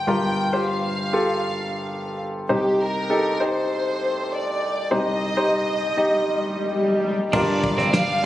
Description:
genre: piano-driven pop.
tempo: 99 BPM.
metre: 4/4.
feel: straight.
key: G minor.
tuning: A4 = 441 Hz.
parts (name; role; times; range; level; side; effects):
dark studio violin section; melody; 0.0-8.3 s; G4 to G5; -25 LUFS; equal; none.
clear concert grand piano; accompaniment; 0.0-8.3 s; G1 to Eb5; -22 LUFS; equal; none.
swell; sound effects; 5.8-7.3 s; none; -26 LUFS; left 1 dB; none.
twelve-string electric guitar; riff; 7.3-8.2 s; C4 to D4; -23 LUFS; right 3 dB; none.
damped 70s drum kit; drums; 7.3-8.1 s; crash cymbal, kick drum, ride cymbal, snare drum; -26 LUFS; equal; none.
room: moderate large studio reverb, RT60 0.9 s.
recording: recorded on a phone in the room, club reverb.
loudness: -20 LUFS.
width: side -14 dB against mid.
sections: 0.0-7.3 A section.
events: swell 5.8-7.3.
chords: 0.0 Gm7; 2.5 Cm; 7.3 Gm7.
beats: | 0.08 0.68 1.29 1.89 | 2.50 3.10 3.71 4.31 | 4.92 5.52 6.13 6.73 | 7.33 7.94.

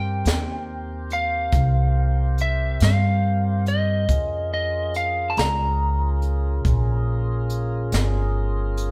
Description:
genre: slow blues.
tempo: 47 BPM (dotted quarters).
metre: 12/8.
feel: straight.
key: unclear.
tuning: A4 = 440 Hz.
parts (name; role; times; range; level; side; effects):
lightly driven lead guitar; melody; 0.0-8.9 s; Eb5 to Bb5; -28 LUFS; equal; none.
tonewheel organ; sustained chords; 0.0-8.9 s; C4 to C5; -36 LUFS; equal; slow rotary speaker.
upright bass; bass; 0.0-8.9 s; G1 to G2; -24 LUFS; equal; none.
jazz brush drum kit; drums; 0.3-8.9 s; hi-hat, kick drum, snare drum; -27 LUFS; equal; none.
room: light reverb.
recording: band playing live in one room.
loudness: -22 LUFS.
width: mono.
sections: 0.0-8.9 A section.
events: none.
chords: 0.0 Cm7; 4.1 Bbm7.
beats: 0.25 1.53 2.81 | 4.09 5.37 6.65 7.93.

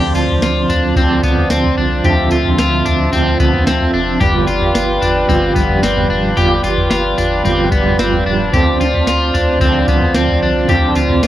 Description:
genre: dream pop.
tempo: 111 BPM.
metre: 4/4.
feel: straight.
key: D dorian.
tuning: A4 = 439 Hz.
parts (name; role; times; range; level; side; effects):
clean electric guitar; accompaniment; 0.0-11.3 s; G2 to A4; -17 LUFS; right 2 dB; tremolo, ensemble chorus.
pedal harmonium; sustained chords; 0.0-11.3 s; F4 to A5; -19 LUFS; right 1 dB; none.
electric guitar at the edge of break-up; arpeggios; 0.0-11.3 s; B3 to G4; -18 LUFS; left 3 dB; wide subtle chorus, tape echo.
saturated sub bass; bass; 0.0-11.3 s; E1 to D2; -20 LUFS; equal; none.
soft vintage rhythm box; drums; 0.1-11.3 s; kick drum, snare drum, tambourine, toms; -18 LUFS; equal; none.
room: light reverb.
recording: worn, warbling old tape, cassette tape, warbly pitch drift.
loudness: -11 LUFS.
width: side -13 dB against mid.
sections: 0.0-11.3 A section.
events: none.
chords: 0.0 Dm7; 4.2 G7; 8.5 Dm7.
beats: 0.42 0.96 1.51 | 2.05 2.59 3.13 3.67 | 4.21 4.75 5.29 5.83 | 6.37 6.91 7.45 7.99 | 8.53 9.07 9.61 10.15 | 10.70 11.24.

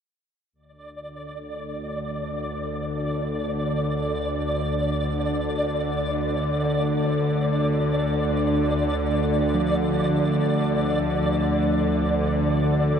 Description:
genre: dark ambient drone.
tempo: free time.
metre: none.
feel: none.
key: D minor.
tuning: A4 = 441 Hz.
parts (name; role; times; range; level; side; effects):
bowed-like drone; drone; 1.1-13.0 s; D2 to D3; -23 LUFS; equal; built-in reverb.
flickering grainy texture; texture; 0.9-13.0 s; D5; -28 LUFS; equal; built-in reverb.
quartz singing bowl; arpeggios; 9.5-13.0 s; F3; -28 LUFS; right 1 dB; ping-pong delay.
room: wet huge ambient reverb, RT60 7.3 s.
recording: dark, warm production.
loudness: -21 LUFS.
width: side -7 dB against mid.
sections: 0.5-13.0 A section.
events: filter sweep on synth drone 0.5-13.0.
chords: 0.5 Dm.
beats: free time.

